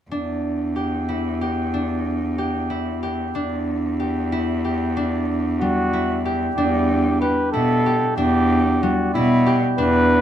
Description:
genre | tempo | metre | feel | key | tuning
contemporary instrumental, chamber music in an uneven meter | 186 BPM (eighths) | 5/8 | straight | E minor | A4 = 437 Hz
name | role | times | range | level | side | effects
concert harp | arpeggios | 0.1-10.2 s | G3 to G4 | -23 LUFS | equal | none
clear cello | bass | 0.1-10.2 s | E2 to B2 | -22 LUFS | equal | none
warm flugelhorn | melody | 5.6-10.2 s | E4 to B4 | -21 LUFS | equal | none
room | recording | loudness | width
little or no reverb | close, detailed microphones | -18 LUFS | side -10 dB against mid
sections
0.1-6.6 A section; 6.6-10.2 B section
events
none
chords
0.1 Em7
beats
| 0.11 0.43 0.76 1.08 1.41 | 1.73 2.05 2.38 2.70 3.02 | 3.35 3.67 3.99 4.31 4.64 | 4.96 5.28 5.61 5.93 6.25 | 6.57 6.90 7.22 7.54 7.86 | 8.18 8.51 8.83 9.15 9.47 | 9.79 10.12

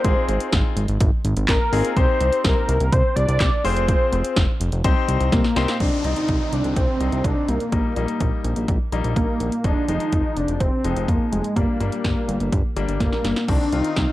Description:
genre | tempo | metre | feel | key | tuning
synth-pop | 125 BPM | 4/4 | straight | C minor | A4 = 439 Hz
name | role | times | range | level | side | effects
fat analog lead | melody | 0.0-14.1 s | Ab3 to D5 | -23 LUFS | equal | chorus, slapback echo
bright grand piano | accompaniment | 0.0-14.1 s | Eb3 to D5 | -28 LUFS | left 7 dB | none
fat analog bass | bass | 0.0-14.1 s | F1 to C2 | -22 LUFS | equal | none
punchy analog drum machine | drums | 0.0-14.1 s | crash cymbal, handclaps, hi-hat, kick drum, snare drum | -22 LUFS | equal | none
downlifter | sound effects | 5.8-9.6 s | none | -35 LUFS | right 1 dB | none
room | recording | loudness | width
light reverb, digital ambience | dark, warm production | -18 LUFS | side -16 dB against mid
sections
0.0-5.8 A section; 5.8-14.1 B section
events
drum fill 5.3-5.8, 13.0-13.5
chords
0.0 Ab6; 2.0 Cm; 3.6 Fm; 4.8 Cm; 5.8 Cmadd9; 7.7 Eb/Bb; 9.6 Fm7; 11.6 Gm; 13.5 Cmadd9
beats
| 0.04 0.53 1.00 1.49 | 1.97 2.44 2.92 3.40 | 3.88 4.37 4.84 5.33 | 5.80 6.29 6.76 7.25 | 7.72 8.21 8.69 9.16 | 9.64 10.12 10.61 11.09 | 11.56 12.04 12.53 13.01 | 13.48 13.96

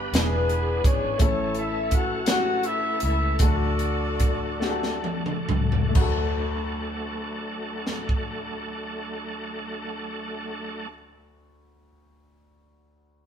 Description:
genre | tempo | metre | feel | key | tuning
slow gospel | 42-56 BPM (dotted quarters) | 6/8 | straight | D major | A4 = 439 Hz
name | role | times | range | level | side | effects
warm horn section | melody | 0.0-5.1 s | B3 to F#5 | -26 LUFS | left 2 dB | none
warm grand piano | accompaniment | 0.0-13.3 s | D2 to B4 | -32 LUFS | left 4 dB | none
bright tonewheel organ | sustained chords | 0.0-10.9 s | E3 to B4 | -33 LUFS | right 1 dB | overdrive, chorus vibrato, fast rotary speaker
vintage muted fingered electric bass | bass | 0.0-10.9 s | E1 to D2 | -28 LUFS | right 1 dB | none
crisp fusion drum kit | drums | 0.1-8.3 s | crash cymbal, hi-hat, kick drum, snare drum, toms | -24 LUFS | equal | none
room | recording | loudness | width
moderate stone room reverb, RT60 1.4 s | band playing live in one room | -23 LUFS | side -8 dB against mid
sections
0.0-6.0 A section; 6.0-11.7 B section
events
slowing down 1.2-6.0; drum fill 4.6-6.0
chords
0.1 E7; 1.2 A; 3.4 D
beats
0.13 | 1.20 2.28 | 3.41 4.62 | 5.96 7.38 | 8.81 10.23

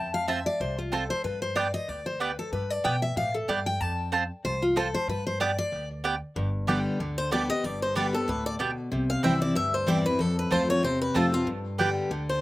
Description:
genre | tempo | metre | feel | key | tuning
bluegrass | 188 BPM | 4/4 | swing 56% on 8ths | G mixolydian | A4 = 440 Hz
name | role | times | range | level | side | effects
picked steel-string acoustic guitar | accompaniment | 0.0-12.4 s | F2 to A5 | -27 LUFS | left 1 dB | none
upright bass | bass | 0.0-12.4 s | G1 to B2 | -35 LUFS | equal | none
mandolin | stabs | 0.3-11.9 s | B3 to A5 | -29 LUFS | right 4 dB | slapback echo
picked swing-style acoustic guitar | melody | 7.2-12.4 s | F4 to F5 | -28 LUFS | left 1 dB | none
room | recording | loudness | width
little or no reverb | recorded outdoors, with no room sound | -25 LUFS | side -17 dB against mid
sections
0.0-6.4 A section; 6.4-12.4 B section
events
steel-string acoustic guitar solo 0.0-6.4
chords
0.0 F; 1.2 G; 3.8 F; 5.1 G; 8.9 C; 10.2 F; 11.5 G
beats
0.29 0.61 0.93 | 1.25 1.57 1.89 2.21 | 2.53 2.85 3.17 3.49 | 3.81 4.13 4.45 4.77 | 5.09 5.41 5.72 6.04 | 6.36 6.68 7.00 7.32 | 7.64 7.96 8.28 8.60 | 8.92 9.24 9.56 9.88 | 10.20 10.52 10.84 11.15 | 11.47 11.79 12.11

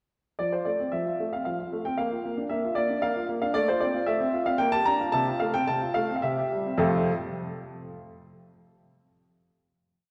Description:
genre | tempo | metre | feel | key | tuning
classical-period piano sonatina | 112 BPM | 3/4 | uneven beats | F major | A4 = 440 Hz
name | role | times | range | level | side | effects
warm baby grand piano | solo | 0.4-7.1 s | F2 to Bb5 | -27 LUFS | equal | none
room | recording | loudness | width
wet church reverb, RT60 2.7 s | recorded in a church or concert hall | -27 LUFS | mono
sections
0.4-6.8 A section; 6.8-8.5 final chord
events
none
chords
0.4 F; 2.0 Bb; 3.6 F/A; 4.6 Gm7/Bb; 5.1 F/C; 6.2 C; 6.8 F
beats
| 0.40 0.93 1.46 | 1.99 2.52 3.04 | 3.56 4.08 4.61 | 5.14 5.68 6.23 | 6.80

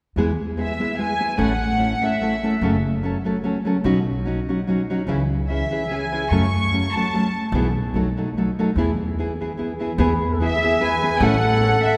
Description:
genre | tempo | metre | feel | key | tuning
mexican folk, mariachi | 147 BPM | 3/4 | swing 54% on 8ths | E major | A4 = 440 Hz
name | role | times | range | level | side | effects
nylon-string guitar | accompaniment | 0.2-11.8 s | F#2 to A4 | -24 LUFS | equal | none
upright bass | bass | 0.2-11.7 s | F#1 to F#2 | -27 LUFS | equal | none
rich studio violin section | melody | 0.6-2.4, 5.5-7.3, 10.5-12.0 s | E5 to C#6 | -25 LUFS | equal | none
trumpet with bucket mute | second line | 10.0-12.0 s | G#4 to B4 | -26 LUFS | equal | none
room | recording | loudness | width
wet church reverb, RT60 2.7 s | recorded in a church or concert hall | -21 LUFS | mono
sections
0.2-10.0 A section; 10.0-12.0 A section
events
none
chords
0.2 E; 1.4 A; 2.6 F#m; 3.8 Badd9; 5.1 C#m; 6.3 F#m; 7.5 E/B; 7.9 B7; 8.8 E; 11.2 A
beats
| 0.17 0.58 0.99 | 1.39 1.80 2.21 | 2.62 3.02 3.43 | 3.84 4.25 4.67 | 5.08 5.49 5.90 | 6.31 6.72 7.13 | 7.53 7.94 8.35 | 8.76 9.17 9.58 | 9.99 10.40 10.81 | 11.21 11.62

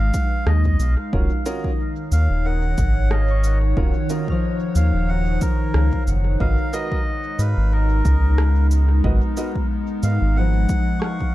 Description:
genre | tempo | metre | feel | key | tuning
ambient dub | 91 BPM | 4/4 | swing 56% on 16ths | Eb minor | A4 = 440 Hz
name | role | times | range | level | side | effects
melodica | melody | 0.0-11.3 s | Bb4 to Gb5 | -30 LUFS | right 1 dB | vintage 12-bit sampler grit, dub echo
warbly tape-like pad | sustained chords | 0.0-11.3 s | Eb3 to Db5 | -27 LUFS | equal | chorus, built-in reverb, phaser
concert harp | arpeggios | 0.0-11.3 s | F3 to F6 | -28 LUFS | left 4 dB | dub echo
round analog bass | bass | 0.0-10.7 s | Eb1 to Ab2 | -17 LUFS | equal | none
electronic kick drum | drums | 0.1-11.3 s | none | -23 LUFS | equal | none
electronic shaker and rim click | drums | 0.1-11.2 s | none | -31 LUFS | right 1 dB | dub echo
warm upright piano | stabs | 1.1-9.5 s | Db4 to Eb5 | -33 LUFS | right 2 dB | dub echo
room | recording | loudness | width
studio reverb | dark, warm production | -17 LUFS | side -16 dB against mid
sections
0.0-11.3 A section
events
none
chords
0.0 Abm; 1.1 Ebm7; 6.4 Abm7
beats
0.47 | 1.13 1.79 2.45 3.11 | 3.77 4.43 5.09 5.75 | 6.41 7.07 7.72 8.38 | 9.04 9.70 10.36 11.02

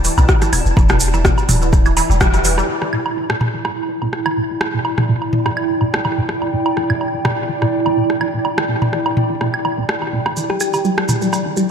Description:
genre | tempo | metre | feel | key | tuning
minimal techno | 125 BPM | 4/4 | swing 54% on 16ths | E minor | A4 = 440 Hz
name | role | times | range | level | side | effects
resonant blip pluck | riff | 0.0-11.6 s | B2 to G3 | -22 LUFS | equal | phaser, wide subtle chorus, sidechain pumping, ping-pong delay
punchy sub bass | bass | 0.0-11.6 s | D1 to B1 | -19 LUFS | equal | sidechain pumping, high-pass filter
minimal click drum kit | drums | 0.0-2.6 s | hi-hat, rim click | -20 LUFS | equal | low-pass filter on snare, low-pass filter on hats, low-pass filter on room
maracas | percussion | 0.0-2.7, 10.4-11.7 s | none | -26 LUFS | right 4 dB | none
granular cloud pad | texture | 0.0-11.7 s | E4 to A5 | -21 LUFS | right 2 dB | built-in reverb, analog chorus, sidechain pumping
booming analog drum machine | percussion | 0.2-11.4 s | claves, rim click, toms, woodblock | -20 LUFS | right 1 dB | tape echo
electronic kick drum | drums | 0.3-2.3 s | none | -15 LUFS | equal | none
thumb-piano-like synth pluck | melody | 10.5-10.9 s | G4 | -23 LUFS | left 2 dB | chorus, tape echo
room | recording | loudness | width
moderate lush hall reverb, RT60 1.8 s | dreamy mix soaked in reverb | -15 LUFS | side -7 dB against mid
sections
0.0-2.7 A section; 2.7-11.7 B section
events
drop 0.0-2.7; band accent 2.2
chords
0.0 E7(no3); 2.7 Em7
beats
0.29 | 0.77 1.25 1.73 2.21 | 2.69 3.17 3.65 4.13 | 4.61 5.09 5.57 6.05 | 6.53 7.01 7.49 7.97 | 8.45 8.93 9.41 9.89 | 10.37 10.85 11.33

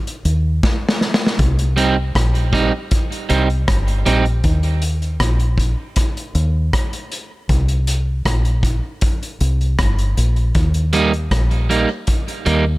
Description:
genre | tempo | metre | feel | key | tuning
dub reggae | 79 BPM | 4/4 | straight | C minor | A4 = 441 Hz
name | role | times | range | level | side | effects
vintage drum kit | drums | 0.1-12.6 s | hi-hat, kick drum, rim click, snare drum | -19 LUFS | equal | none
deep dub fingered electric bass | bass | 0.3-12.8 s | G1 to Eb2 | -17 LUFS | equal | none
electric guitar at the edge of break-up | accompaniment | 1.8-4.2, 10.9-12.6 s | G3 to Eb4 | -19 LUFS | right 4 dB | tape echo
room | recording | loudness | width
small room ambience | none | -15 LUFS | side -19 dB against mid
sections
0.0-1.4 A section; 1.4-12.8 B section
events
break 0.0-1.4; drum fill 0.6-1.4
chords
0.0 Eb5; 1.4 Cm; 4.4 Eb5; 7.5 C5; 10.6 Eb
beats
0.63 | 1.40 2.16 2.92 3.68 | 4.44 5.21 5.97 6.73 | 7.50 8.26 9.02 9.79 | 10.55 11.31 12.08

